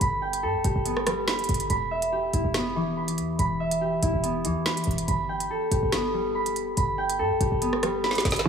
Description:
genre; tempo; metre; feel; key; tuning
hip hop, drill; 142 BPM; 4/4; half-time; unclear; A4 = 440 Hz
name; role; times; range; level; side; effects
concert harp; arpeggios; 0.0-8.5 s; E3 to B5; -25 LUFS; equal; low-pass filter, digital delay
short 808-style bass; bass; 0.0-8.5 s; E1 to G2; -30 LUFS; equal; none
drill drum kit; drums; 0.0-8.5 s; hi-hat, rim click, snare drum; -29 LUFS; right 1 dB; none
semi-hollow electric guitar; accompaniment; 8.5 s; E3; -21 LUFS; right 4 dB; spring reverb, low-pass filter
room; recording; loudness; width
moderate lush hall reverb, RT60 1.7 s; small room ambience; -23 LUFS; side -7 dB against mid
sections
0.0-8.5 A section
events
drum fill 8.0-8.5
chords
0.0 Gadd9; 1.7 Em; 5.1 Gadd9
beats
| 0.01 0.43 0.86 1.28 | 1.70 2.12 2.55 2.97 | 3.39 3.81 4.24 4.66 | 5.08 5.50 5.93 6.35 | 6.77 7.19 7.62 8.04 | 8.46

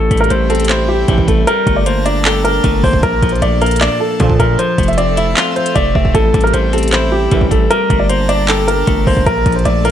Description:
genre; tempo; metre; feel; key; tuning
hip hop, trap; 154 BPM; 4/4; half-time; A phrygian; A4 = 440 Hz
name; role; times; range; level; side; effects
dark baby grand piano; melody; 0.0-9.9 s; G4 to E5; -15 LUFS; equal; none
clean electric guitar; accompaniment; 0.0-9.9 s; A2 to G4; -19 LUFS; left 7 dB; none
airy breathy pad; sustained chords; 0.0-9.9 s; Bb2 to Bb5; -24 LUFS; right 2 dB; chorus
distorted 808-style bass; bass; 0.0-9.9 s; F1 to Bb2; -17 LUFS; right 1 dB; distortion
organic electronic drum kit; drums; 0.1-9.9 s; handclaps, hi-hat, kick drum; -16 LUFS; right 1 dB; overdrive, vintage 12-bit sampler grit
mellow brass ensemble; stabs; 1.1-1.5, 4.2-4.6, 7.3-7.7 s; C2 to F3; -23 LUFS; right 7 dB; ping-pong delay
room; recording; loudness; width
light reverb; none; -11 LUFS; side -10 dB against mid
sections
0.0-9.9 A section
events
none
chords
0.0 Am7; 1.5 Gmadd9; 3.0 Bbmaj7; 4.6 Fmaj7; 6.1 Am7; 7.7 Gmadd9; 9.3 Bbmaj7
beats
0.30 0.69 1.08 | 1.47 1.86 2.25 2.64 | 3.03 3.42 3.81 4.20 | 4.59 4.98 5.37 5.76 | 6.15 6.54 6.93 7.32 | 7.71 8.10 8.48 8.87 | 9.26 9.65

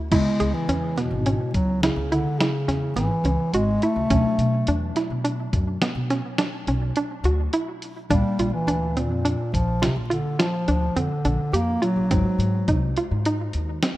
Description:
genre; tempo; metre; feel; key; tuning
progressive instrumental, band music in an uneven meter; 105 BPM; 7/4; straight; unclear; A4 = 440 Hz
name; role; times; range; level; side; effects
tine electric piano; accompaniment; 0.0-14.0 s; Bb2 to F5; -34 LUFS; left 1 dB; medium stereo tremolo
upright bass; bass; 0.0-13.8 s; G#1 to B2; -25 LUFS; equal; none
mellow bass clarinet; melody; 0.1-13.0 s; Bb2 to Bb3; -24 LUFS; equal; none
hollow square pluck; arpeggios; 0.1-14.0 s; B3 to G#4; -27 LUFS; right 2 dB; chorus, tape echo
lo-fi sampler-style drum kit; drums; 0.1-14.0 s; crash cymbal, hi-hat, kick drum, snare drum; -26 LUFS; equal; none
room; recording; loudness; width
light reverb, digital ambience; rough home demo mix; -20 LUFS; side -16 dB against mid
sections
0.1-14.0 A section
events
none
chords
0.1 C#m7; 4.1 Bm7; 8.1 Bb; 12.1 G#7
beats
| 0.12 0.69 1.26 1.83 2.40 2.97 3.54 | 4.11 4.68 5.25 5.82 6.39 6.96 7.54 | 8.11 8.68 9.25 9.82 10.40 10.97 11.54 | 12.11 12.69 13.26 13.84

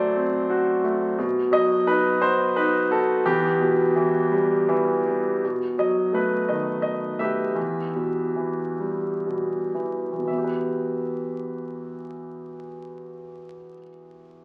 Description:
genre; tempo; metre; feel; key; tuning
classical, lyrical solo piano; 55-89 BPM; 3/4; rubato; E minor; A4 = 440 Hz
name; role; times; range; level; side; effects
bright grand piano; solo; 0.0-14.4 s; E2 to E5; -24 LUFS; equal; none
room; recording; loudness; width
wet recital hall reverb, RT60 1.6 s; very old 78 rpm record, vinyl crackle; -23 LUFS; mono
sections
0.0-5.4 A section; 5.4-10.3 B section; 10.3-14.4 C section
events
slowing down 5.4-10.3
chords
0.0 F#dim; 1.2 B; 3.2 Em; 5.4 B7; 7.6 Em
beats
0.50 | 1.18 1.86 2.55 | 3.24 3.95 4.68 | 5.42 6.13 6.83 | 7.57 8.37 9.26 | 10.28 11.35 12.38 | 13.40 14.43

